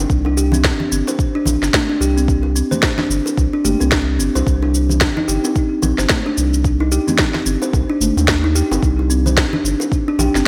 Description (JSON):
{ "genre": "organic downtempo", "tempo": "110 BPM", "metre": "4/4", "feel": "swing 59% on 16ths", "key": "C minor", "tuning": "A4 = 441 Hz", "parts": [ { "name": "kalimba", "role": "arpeggios", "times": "0.0-10.5 s", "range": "C4 to C5", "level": "-21 LUFS", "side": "equal", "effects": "digital delay" }, { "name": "round analog bass", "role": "bass", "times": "0.0-10.4 s", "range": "G1 to Eb2", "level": "-20 LUFS", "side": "equal", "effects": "tube saturation, sidechain pumping" }, { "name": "electronic kick drum", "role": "drums", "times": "0.1-10.0 s", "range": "none", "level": "-22 LUFS", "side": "equal", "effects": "small room ambience" }, { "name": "electronic shaker and snare drum", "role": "drums", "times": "0.1-10.4 s", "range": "none", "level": "-22 LUFS", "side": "equal", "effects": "small room ambience" }, { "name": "bongos and congas", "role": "percussion", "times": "0.2-10.3 s", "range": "none", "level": "-28 LUFS", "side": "equal", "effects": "none" } ], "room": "light reverb", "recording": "bright 1980s-style digital production", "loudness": "-17 LUFS", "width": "mono", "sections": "0.0-10.5 A section", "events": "none", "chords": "0.1 G5; 4.5 Cm; 8.8 G5", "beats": "| 0.10 0.64 1.19 1.73 | 2.28 2.82 3.37 3.92 | 4.46 5.01 5.55 6.10 | 6.64 7.19 7.73 8.28 | 8.82 9.37 9.91 10.46" }